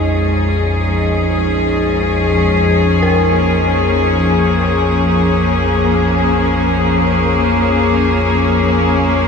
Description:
dark ambient drone; free time; Bb minor; A4 = 440 Hz
warm studio cello section; sustained chords; 0.0-9.3 s; Bb2 to Ab4; -14 LUFS; left 2 dB
dark detuned synth bell; arpeggios; 0.0-9.3 s; Bb4; -24 LUFS; left 1 dB; chorus, tremolo, tape echo
deep rumbling drone; drone; 0.0-9.3 s; Bb1 to F2; -18 LUFS; left 1 dB; built-in reverb, lush chorus
metallic inharmonic drone; texture; 0.0-9.3 s; Db4 to Eb4; -22 LUFS; right 2 dB; chorus, built-in reverb
wet cathedral reverb, RT60 6.1 s; studio reverb; -12 LUFS; side -5 dB against mid
0.0-2.5 A section; 2.5-9.3 B section
filter sweep on synth drone 0.0-2.5
0.0 Bbm7

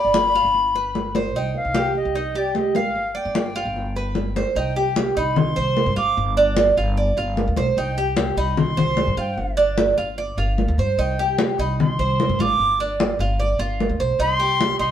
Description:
latin, Cuban son and guajira; 150 BPM; 4/4; straight; C harmonic minor; A4 = 440 Hz
silver concert flute; melody; 0.0-14.9 s; D5 to D6; -23 LUFS; left 1 dB
Cuban tres; arpeggios; 0.0-14.9 s; D4 to F5; -22 LUFS; right 3 dB
upright bass; bass; 0.0-14.9 s; G1 to G2; -25 LUFS; equal
congas; percussion; 0.1-14.8 s; -24 LUFS; left 2 dB
moderate studio reverb, RT60 0.8 s; band playing live in one room; -18 LUFS; side -10 dB against mid
0.0-4.6 A section; 4.6-14.9 B section
0.0 G7; 1.4 Cm; 3.0 G7; 4.6 Cm; 6.2 G7(no3); 7.8 Cm; 9.4 G5; 11.0 Cm; 12.6 G7(no3); 14.2 Cm

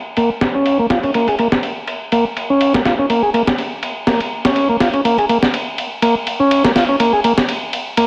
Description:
breakbeat, breaks; 123 BPM; 4/4; swing 54% on 16ths; Bb minor; A4 = 439 Hz
combo organ; riff; 0.2-8.1 s; Bb3 to Ab4; -18 LUFS; equal; overdrive, vintage 12-bit sampler grit, low-pass filter, tape echo
breakbeat sampler-style drum kit; drums; 0.2-8.1 s; ride cymbal, snare drum; -20 LUFS; equal; soft clipping on snare, low-pass filter on snare, studio reverb, low-pass filter on cymbals
moderate plate reverb, RT60 1.3 s, digital ambience; dense, heavily limited modern master; -16 LUFS; mono
0.0-8.1 A section

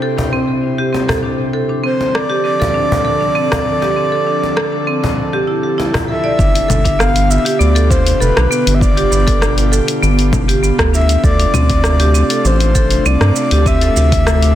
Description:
organic downtempo; 99 BPM; 4/4; straight; A4 = 440 Hz
airy breathy pad; sustained chords; 0.0-14.6 s; B2 to C5; -22 LUFS; equal; chorus, sidechain pumping
marimba with hard mallets; arpeggios; 0.0-14.6 s; B3 to D5; -18 LUFS; equal; digital delay
cajon; percussion; 0.2-6.1 s; -22 LUFS; left 1 dB
deep house drum kit; drums; 1.1-14.5 s; congas, hi-hat, rim click, shaker; -20 LUFS; equal; overdrive
breathy flute-like synth lead; melody; 1.8-14.6 s; B4 to F5; -18 LUFS; equal; chorus, tape echo
round analog bass; bass; 6.4-14.6 s; F1 to G2; -13 LUFS; equal; tube saturation, sidechain pumping
electronic kick drum; drums; 6.4-14.2 s; -17 LUFS; equal
light reverb; dense, heavily limited modern master; -11 LUFS; side -12 dB against mid
0.0-6.4 A section; 6.4-14.6 B section
0.0 C; 1.5 F6; 6.4 G7; 11.2 Dm7

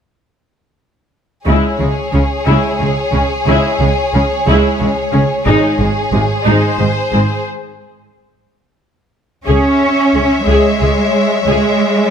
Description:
cinematic; 60 BPM (dotted quarters); 6/8; straight; C# minor; A4 = 440 Hz
warm symphonic violin section; second line; 1.5-12.1 s; G#4 to C#5; -18 LUFS; left 2 dB
rich symphonic viola section; accompaniment; 1.5-11.8 s; B#2 to G#4; -17 LUFS; left 1 dB
clear symphonic double bass section; bass; 1.5-11.5 s; G#1 to C#2; -17 LUFS; right 1 dB
rich symphonic cello section; bass; 1.5-12.1 s; G#2 to C#4; -16 LUFS; right 2 dB
warm symphonic violin section; melody; 9.5-12.1 s; E5; -20 LUFS; left 4 dB
light reverb; close, detailed microphones; -11 LUFS; side -8 dB against mid
1.5-9.5 A section; 9.5-12.1 B section
break 7.5-9.5
1.5 C#m; 5.5 G#; 9.5 C#m

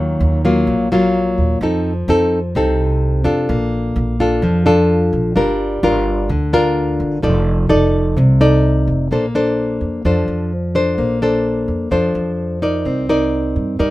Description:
bossa nova; 128 BPM; 4/4; straight; Bb major; A4 = 442 Hz
nylon-string guitar; accompaniment; 0.0-13.9 s; Bb2 to D5; -15 LUFS; left 1 dB
upright bass; bass; 0.0-13.9 s; F1 to G2; -20 LUFS; right 1 dB
light reverb; minimal, uncompressed stereo recording; -14 LUFS; side -17 dB against mid
0.0-9.1 A section; 9.1-13.9 B section
0.0 Ebmadd9; 1.6 F7; 3.5 Bbmaj7; 5.4 Gm7; 7.2 F6; 9.1 Bbmaj9; 12.9 Cm9

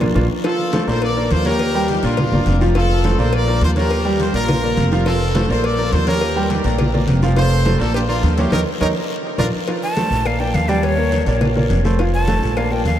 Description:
latin, salsa; 208 BPM; 4/4; straight; A4 = 439 Hz
clear grand piano; accompaniment; 0.0-13.0 s; F3 to G5; -21 LUFS; right 1 dB
upright bass; bass; 0.0-13.0 s; F1 to Eb2; -19 LUFS; equal
congas; percussion; 0.0-13.0 s; -24 LUFS; equal
cowbell; percussion; 0.0-13.0 s; -28 LUFS; left 4 dB
guiro; percussion; 0.0-13.0 s; -36 LUFS; left 7 dB
brilliant horn section; melody; 0.5-9.5 s; D4 to D5; -23 LUFS; equal; analog delay
breathy bright jazz flute; melody; 9.8-13.0 s; Db5 to A5; -22 LUFS; left 1 dB; analog delay
moderate huge ambient reverb, RT60 7.7 s; dreamy mix soaked in reverb; -15 LUFS; side -11 dB against mid
0.4-9.7 A section; 9.7-13.0 B section
band accent 0.0-0.4, 8.5-9.7; drum fill 9.0-9.7; flute solo 9.7-13.0
0.4 F; 1.0 Bb; 1.6 Eb7; 2.2 Bb; 2.8 F; 3.3 Bb; 5.1 F; 5.6 Bb; 6.2 Eb7; 6.8 Bb; 7.4 F; 7.9 Bb; 8.5 Eb7(no3); 9.1 Bb; 9.7 F; 10.3 Bb; 10.8 Eb7; 11.4 Bb; 12.0 F

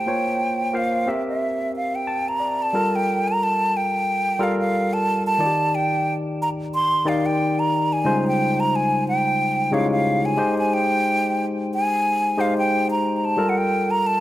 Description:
soul; 90 BPM; 4/4; swing 54% on 16ths; A4 = 440 Hz
breathy mellow silver concert flute; melody; 0.0-14.2 s; E5 to C6; -21 LUFS; right 1 dB
barky tine electric piano; accompaniment; 0.0-14.2 s; Db3 to A5; -23 LUFS; left 1 dB; overdrive
light reverb, studio reverb; -19 LUFS; side -14 dB against mid
0.0-2.7 A section; 2.7-14.2 B section
tine electric piano fill 1.7-2.7
0.1 Bbmadd9; 1.1 C7; 2.7 Gm9; 5.4 Ebmaj7; 8.1 Dbmaj9#11; 10.4 Abmaj7; 13.4 Gm9

